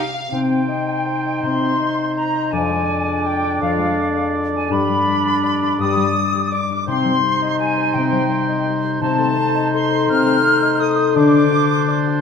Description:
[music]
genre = classical, orchestral ballroom waltz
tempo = 166 BPM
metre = 3/4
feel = uneven beats, rubato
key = C minor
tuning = A4 = 440 Hz
[part]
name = concert harp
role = arpeggios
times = 0.0-12.2 s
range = F2 to C6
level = -21 LUFS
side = left 8 dB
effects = none
[part]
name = flute section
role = second line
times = 0.1-12.0 s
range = F5 to F6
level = -21 LUFS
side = left 1 dB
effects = none
[part]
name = warm clarinet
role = second line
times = 0.3-12.2 s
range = D4 to Eb4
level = -23 LUFS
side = right 1 dB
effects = none
[part]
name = warm oboe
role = second line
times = 0.3-12.2 s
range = C5 to D5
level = -25 LUFS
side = right 3 dB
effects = none
[part]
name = warm French horn section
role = sustained chords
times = 0.3-11.4 s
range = F3 to D4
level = -22 LUFS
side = left 2 dB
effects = none
[sound]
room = moderate scoring stage reverb, RT60 1.8 s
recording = close, detailed microphones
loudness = -16 LUFS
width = side -6 dB against mid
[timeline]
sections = 0.3-12.2 A section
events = none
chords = 0.3 Cm; 2.5 Ddim/F; 4.7 G; 6.9 Cm; 9.0 Adim/C; 11.2 D7

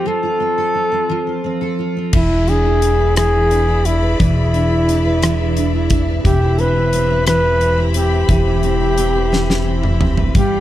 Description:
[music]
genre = six-eight pop ballad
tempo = 58 BPM (dotted quarters)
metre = 6/8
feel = straight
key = unclear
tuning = A4 = 440 Hz
[part]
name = breathy flugelhorn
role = melody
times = 0.0-10.6 s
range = E4 to B4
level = -18 LUFS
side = equal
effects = none
[part]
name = fingerpicked steel-string acoustic guitar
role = accompaniment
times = 0.0-10.6 s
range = E3 to B4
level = -20 LUFS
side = right 1 dB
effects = double-tracked left and right
[part]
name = warm studio string section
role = sustained chords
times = 2.1-10.6 s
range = C4 to B5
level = -26 LUFS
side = left 3 dB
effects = none
[part]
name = upright bass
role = bass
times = 2.1-10.6 s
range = E1 to G1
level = -17 LUFS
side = equal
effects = none
[part]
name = huge arena drum kit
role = drums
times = 2.1-10.5 s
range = crash cymbal, hi-hat, kick drum, rim click, snare drum, toms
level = -20 LUFS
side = equal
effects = none
[sound]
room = small room ambience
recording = dry, close 1970s-style studio recording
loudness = -13 LUFS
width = side -13 dB against mid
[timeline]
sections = 0.0-2.1 A section; 2.1-10.6 B section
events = drum fill 9.3-10.3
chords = 0.0 F; 2.1 E7; 6.2 Cmaj7/E

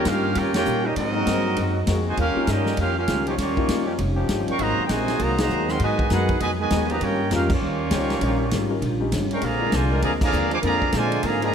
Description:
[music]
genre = jazz, big band swing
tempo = 198 BPM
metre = 4/4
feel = swing 62% on 8ths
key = Eb major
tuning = A4 = 440 Hz
[part]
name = clear trumpet section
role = melody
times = 0.0-11.5 s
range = Bb3 to D6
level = -26 LUFS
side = right 1 dB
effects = none
[part]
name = warm trombone section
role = second line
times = 0.0-11.5 s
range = Cb3 to G4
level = -27 LUFS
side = right 3 dB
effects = none
[part]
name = warm grand piano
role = accompaniment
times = 0.0-11.5 s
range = G3 to Db5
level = -30 LUFS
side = left 6 dB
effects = none
[part]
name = upright bass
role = bass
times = 0.0-11.5 s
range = F1 to Bb2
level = -26 LUFS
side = equal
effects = none
[part]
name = vintage hollow-body jazz guitar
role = accompaniment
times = 0.1-11.4 s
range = Ab2 to Bb4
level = -30 LUFS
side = left 4 dB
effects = none
[part]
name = vintage drum kit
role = drums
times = 0.1-11.5 s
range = crash cymbal, hi-hat, kick drum, ride cymbal, snare drum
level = -29 LUFS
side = equal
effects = none
[part]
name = clear trombone section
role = sustained chords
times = 1.9-11.5 s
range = F3 to Bb4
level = -32 LUFS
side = left 2 dB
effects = none
[sound]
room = moderate concert hall reverb, RT60 2.2 s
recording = none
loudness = -20 LUFS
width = side -7 dB against mid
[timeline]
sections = 0.0-11.5 A section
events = band accent 0.5, 5.3, 7.5, 10.2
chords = 0.0 Eb9; 1.0 Ab9; 2.2 Eb9; 4.6 Ab9; 5.8 Abm7; 7.0 Eb9; 9.4 Bb9

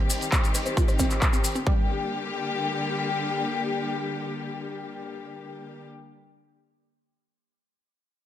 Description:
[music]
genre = uplifting trance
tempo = 134 BPM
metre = 4/4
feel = straight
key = G minor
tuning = A4 = 445 Hz
[part]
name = warm studio string section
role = sustained chords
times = 0.0-5.8 s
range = D3 to G4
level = -29 LUFS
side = left 3 dB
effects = sidechain pumping
[part]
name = punchy analog drum machine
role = drums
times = 0.1-1.6 s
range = handclaps, hi-hat, rim click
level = -31 LUFS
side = equal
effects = low-pass filter on hats, low-pass filter on snare, low-pass filter on room
[part]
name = maracas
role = percussion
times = 0.1-1.6 s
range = none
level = -32 LUFS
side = left 2 dB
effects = none
[part]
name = electronic kick drum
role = drums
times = 0.3-1.8 s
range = none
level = -23 LUFS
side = equal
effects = none
[part]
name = analog pluck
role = arpeggios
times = 0.7-1.9 s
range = G3 to C5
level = -33 LUFS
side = right 1 dB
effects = chorus, sidechain pumping, dub echo
[sound]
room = light reverb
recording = none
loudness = -24 LUFS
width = side -12 dB against mid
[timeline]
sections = 0.0-1.7 A section; 1.7-5.2 B section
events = filter sweep on synth arpeggio sound 0.0-1.7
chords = 0.0 Cm; 1.7 Gm

